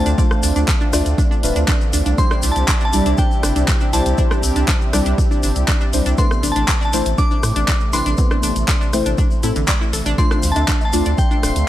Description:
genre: progressive house.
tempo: 120 BPM.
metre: 4/4.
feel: straight.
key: D dorian.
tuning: A4 = 439 Hz.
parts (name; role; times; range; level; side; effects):
glassy synth bell; melody; 0.0-11.7 s; G5 to D6; -26 LUFS; left 1 dB; chorus, tape echo.
lush unison pad; sustained chords; 0.0-11.7 s; C3 to E5; -26 LUFS; equal; chorus, sidechain pumping.
deep mellow chord stab; stabs; 0.0-11.7 s; G3 to D5; -24 LUFS; left 2 dB; chorus, phaser, sidechain pumping, digital delay.
saturated sub bass; bass; 0.0-11.6 s; D1 to A2; -19 LUFS; equal; sidechain pumping.
analog pluck; arpeggios; 0.1-11.5 s; D3 to D5; -26 LUFS; equal; chorus, sidechain pumping, digital delay.
deep house drum kit; drums; 0.1-11.7 s; handclaps, hi-hat, rim click; -24 LUFS; equal; sidechain pumping on hats, studio reverb.
tube shaker; percussion; 0.1-11.7 s; none; -29 LUFS; left 4 dB; none.
electronic kick drum; drums; 0.2-11.3 s; none; -18 LUFS; equal; studio reverb.
drifting glass-harmonics texture; texture; 10.6-11.7 s; C6; -31 LUFS; equal; chorus, built-in reverb, sidechain pumping.
congas and bongos; percussion; 10.3-10.9 s; none; -30 LUFS; left 2 dB; sidechain pumping on perc, studio reverb.
room: digital ambience.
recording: none.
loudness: -14 LUFS.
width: side -13 dB against mid.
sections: 0.0-11.7 A section.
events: none.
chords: 0.0 Dm7; 2.2 Cadd9; 6.2 Amadd9; 10.2 Dm7.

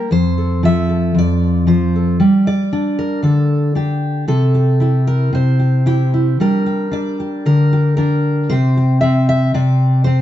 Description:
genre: folk, solo fingerstyle acoustic guitar.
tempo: 115 BPM.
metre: 4/4.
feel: straight.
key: unclear.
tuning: A4 = 439 Hz.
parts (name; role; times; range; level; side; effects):
fingerpicked steel-string acoustic guitar; solo; 0.0-10.2 s; F2 to E5; -13 LUFS; equal; none.
room: wet stone room reverb, RT60 1.1 s.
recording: band playing live in one room, nothing above 7.7 kHz.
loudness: -13 LUFS.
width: side -12 dB against mid.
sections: 0.0-10.2 A section.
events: none.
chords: 0.1 Dm/F; 2.2 G5; 4.3 C; 6.4 Gm; 8.5 C5.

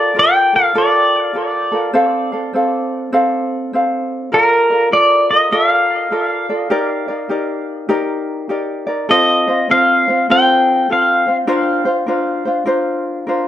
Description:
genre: Hawaiian.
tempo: 101 BPM.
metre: 4/4.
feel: swing 64% on 8ths.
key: Bb major.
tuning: A4 = 439 Hz.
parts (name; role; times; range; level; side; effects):
pedal steel guitar; melody; 0.0-11.4 s; Bb4 to G5; -14 LUFS; equal; analog delay.
ukulele; accompaniment; 0.0-13.5 s; C4 to F5; -17 LUFS; equal; none.
room: moderate small room reverb, RT60 0.5 s.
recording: none.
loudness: -13 LUFS.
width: side -11 dB against mid.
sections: 0.0-13.5 A section.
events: none.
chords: 0.0 Bbmaj7; 1.9 F; 4.3 Bbmaj7; 6.7 Ebmaj7; 9.1 F; 11.5 Bbadd9.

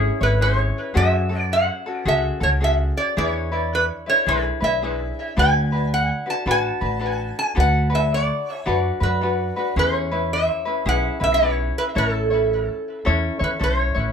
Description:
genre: Hawaiian.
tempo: 109 BPM.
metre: 4/4.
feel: swing 63% on 8ths.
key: unclear.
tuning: A4 = 438 Hz.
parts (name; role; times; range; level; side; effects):
metal-body resonator slide guitar; melody; 0.0-14.1 s; G#4 to A5; -22 LUFS; right 1 dB; tape echo.
ukulele; accompaniment; 0.0-14.1 s; C#4 to C#5; -25 LUFS; left 3 dB; none.
upright bass; bass; 0.0-14.1 s; G#1 to F#2; -22 LUFS; equal; none.
room: light reverb.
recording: none.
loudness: -18 LUFS.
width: side -7 dB against mid.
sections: 0.0-14.1 A section.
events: none.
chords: 0.0 C#m; 1.0 F#madd9; 3.2 E7; 5.4 D6; 7.6 Bm7/D; 9.8 E6; 12.0 A.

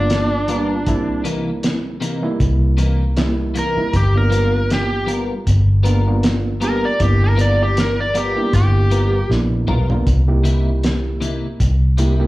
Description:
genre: straight-eighth soul blues.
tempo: 78 BPM.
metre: 4/4.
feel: swing 56% on 16ths.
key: unclear.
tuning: A4 = 440 Hz.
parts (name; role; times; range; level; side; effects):
overdriven slide guitar; melody; 0.0-9.3 s; D4 to D5; -20 LUFS; equal; slapback echo.
overdriven reed electric piano; accompaniment; 0.0-12.3 s; G3 to G4; -23 LUFS; right 2 dB; slapback echo.
vintage muted fingered electric bass; bass; 0.0-12.3 s; G1 to C2; -17 LUFS; equal; none.
cloth-damped thuddy drum kit; drums; 0.1-12.2 s; hi-hat, kick drum, snare drum, toms; -22 LUFS; equal; none.
clean electric guitar; stabs; 0.5-12.2 s; C3 to A#4; -26 LUFS; left 3 dB; analog chorus, slapback echo.
room: small room ambience.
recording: live gig heard through the venue's PA, club reverb.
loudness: -15 LUFS.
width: side -18 dB against mid.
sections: 0.0-12.3 A section.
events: drum fill 9.3-10.1.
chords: 0.0 G7#9; 0.9 C7#9; 3.9 G7#9; 10.1 C7#9.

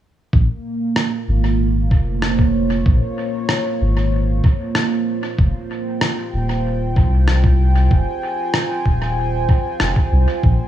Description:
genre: ambient dub.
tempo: 95 BPM.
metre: 4/4.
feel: straight.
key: Bb dorian.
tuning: A4 = 437 Hz.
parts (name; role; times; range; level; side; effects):
warm analog pad; sustained chords; 0.3-10.7 s; Bb3 to Ab5; -22 LUFS; right 2 dB; chorus.
soft dub sub bass; bass; 0.3-10.6 s; Eb1 to C2; -16 LUFS; equal; none.
electronic kick drum; drums; 0.3-10.6 s; none; -16 LUFS; equal; none.
electronic rim click; drums; 1.0-9.9 s; none; -24 LUFS; equal; dub echo.
room: light reverb, digital ambience.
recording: studio ambience.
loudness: -15 LUFS.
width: side -11 dB against mid.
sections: 0.3-10.7 A section.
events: none.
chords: 0.3 Bbm7; 5.4 Fm.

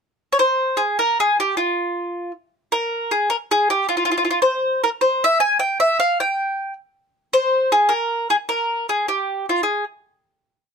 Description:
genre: italian folk.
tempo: 104 BPM (dotted quarters).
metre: 6/8.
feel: straight.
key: F harmonic minor.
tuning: A4 = 440 Hz.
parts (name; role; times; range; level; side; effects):
bowl-back mandolin; solo; 0.3-9.8 s; F4 to Ab5; -17 LUFS; equal; none.
room: light reverb.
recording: close, detailed microphones.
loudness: -17 LUFS.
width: side -6 dB against mid.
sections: 0.0-0.4 pickup bar; 0.4-9.7 A section; 9.7-10.7 final note.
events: none.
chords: none.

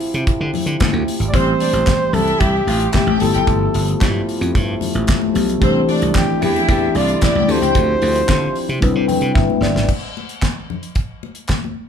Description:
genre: disco.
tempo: 112 BPM.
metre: 4/4.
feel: straight.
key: C major.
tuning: A4 = 441 Hz.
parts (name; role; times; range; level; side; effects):
mellow French horn section; sustained chords; 0.0-9.9 s; C3 to B4; -26 LUFS; right 1 dB; none.
damped 70s drum kit; drums; 0.0-11.6 s; crash cymbal, handclaps, hi-hat, kick drum, snare drum; -20 LUFS; equal; none.
slap bass; bass; 0.1-9.8 s; F#1 to D3; -21 LUFS; right 1 dB; none.
congas; percussion; 0.5-11.8 s; none; -25 LUFS; left 8 dB; none.
warm flugelhorn; melody; 1.3-9.1 s; G4 to D5; -20 LUFS; right 1 dB; slapback echo.
rich studio string section; second line; 1.3-7.7 s; C4 to A5; -23 LUFS; left 3 dB; none.
mellow tine electric piano; accompaniment; 1.3-9.9 s; E3 to G5; -20 LUFS; left 3 dB; slow stereo tremolo.
room: moderate large studio reverb, RT60 0.9 s.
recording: band playing live in one room.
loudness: -14 LUFS.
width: side -8 dB against mid.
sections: 0.0-9.9 A section; 9.9-11.9 B section.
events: tine electric piano fill 8.8-9.9; drum fill 9.4-9.9.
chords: 0.0 Dm11; 1.3 Am7; 3.2 G13; 5.6 C69; 7.5 Dm11; 8.8 Cmaj9; 9.9 N.C..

